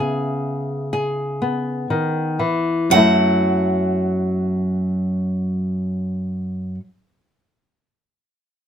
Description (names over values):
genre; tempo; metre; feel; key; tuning
folk; 60 BPM; 4/4; straight; F# minor; A4 = 443 Hz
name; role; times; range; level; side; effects
picked steel-string acoustic guitar; melody; 0.0-6.7 s; E5 to F#5; -21 LUFS; right 4 dB; none
nylon-string guitar; accompaniment; 0.0-6.9 s; F#2 to A4; -19 LUFS; left 1 dB; none
room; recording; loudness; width
moderate small room reverb, RT60 0.5 s; none; -18 LUFS; side -8 dB against mid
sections
0.0-2.9 A section; 2.9-6.9 B section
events
slowing down 0.0-2.9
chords
0.0 C#m7; 2.9 F#m7